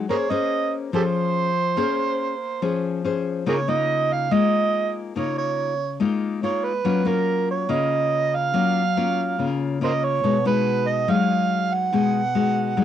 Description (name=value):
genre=bossa nova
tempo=142 BPM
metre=4/4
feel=straight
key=Db major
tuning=A4 = 441 Hz
part: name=nylon-string guitar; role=accompaniment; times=0.0-12.8 s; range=Cb3 to C5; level=-22 LUFS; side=left 5 dB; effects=cassette tape
part: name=overdriven harmonica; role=melody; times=0.1-12.8 s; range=G4 to Gb5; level=-23 LUFS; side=right 6 dB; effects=cassette tape
room=light reverb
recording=home recording on cassette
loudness=-20 LUFS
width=side -10 dB against mid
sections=0.0-12.8 A section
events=none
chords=0.1 Bbm9; 3.5 Db69; 6.9 Gbmaj7; 10.2 Cb6